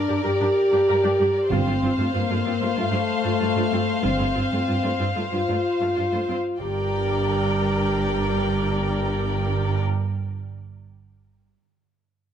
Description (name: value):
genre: cinematic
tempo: 94 BPM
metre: 4/4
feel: straight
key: G minor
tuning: A4 = 440 Hz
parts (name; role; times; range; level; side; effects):
- rich studio violin section; second line; 0.0-9.8 s; Bb4 to G5; -28 LUFS; left 3 dB; none
- mellow French horn section; sustained chords; 0.0-9.8 s; A3 to G4; -24 LUFS; left 1 dB; none
- warm symphonic viola section; accompaniment; 0.1-9.8 s; A3 to Bb4; -30 LUFS; equal; none
- bright symphonic cello section; bass; 0.1-9.8 s; G2; -27 LUFS; right 3 dB; none
- clear studio double bass section; bass; 1.5-9.8 s; G1; -27 LUFS; right 3 dB; none
room: light reverb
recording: close, detailed microphones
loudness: -20 LUFS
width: side -9 dB against mid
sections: 0.0-6.6 A section; 6.6-9.2 B section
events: none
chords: 0.0 Gm; 1.5 F/G; 6.6 Gm